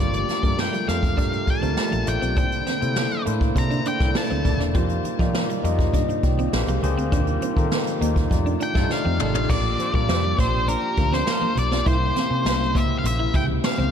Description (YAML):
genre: polished 1980s jazz-funk pop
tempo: 101 BPM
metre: 4/4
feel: straight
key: Bb major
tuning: A4 = 435 Hz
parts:
  - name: octave-fuzz lead guitar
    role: melody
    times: 0.0-4.6, 8.6-13.9 s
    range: Bb4 to Bb5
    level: -26 LUFS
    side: left 2 dB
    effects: distortion, slapback echo
  - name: overdriven tine electric piano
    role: accompaniment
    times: 0.0-13.9 s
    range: A3 to G5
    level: -27 LUFS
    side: left 2 dB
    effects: wide subtle chorus, slapback echo
  - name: hollow soft pad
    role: sustained chords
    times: 0.0-13.9 s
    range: C3 to G4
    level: -33 LUFS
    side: equal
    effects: none
  - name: clean electric guitar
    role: riff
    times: 0.0-13.9 s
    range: G3 to F4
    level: -32 LUFS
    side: right 2 dB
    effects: analog chorus
  - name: vintage muted fingered electric bass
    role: bass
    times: 0.0-13.9 s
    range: Eb1 to F3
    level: -25 LUFS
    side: equal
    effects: none
  - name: jazz brush drum kit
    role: drums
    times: 0.1-13.8 s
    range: crash cymbal, hi-hat, kick drum, snare drum, toms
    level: -24 LUFS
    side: right 1 dB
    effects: none
  - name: congas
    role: percussion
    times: 0.3-13.9 s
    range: none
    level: -38 LUFS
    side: right 3 dB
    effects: none
  - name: warm horn section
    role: second line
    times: 8.7-11.5 s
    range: Eb3 to C5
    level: -35 LUFS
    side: right 3 dB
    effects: slapback echo, ping-pong delay
room: moderate lush hall reverb, RT60 1.9 s, small room ambience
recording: big arena sound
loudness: -19 LUFS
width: side -8 dB against mid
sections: 0.0-9.5 A section; 9.5-13.9 B section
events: band accent 7.1-9.5; drum fill 8.9-9.5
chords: 0.0 Gm9; 2.4 C13; 4.7 F9sus4; 6.5 Bb13; 7.1 Eb69; 8.3 F13; 9.5 Bb6; 11.9 C7b9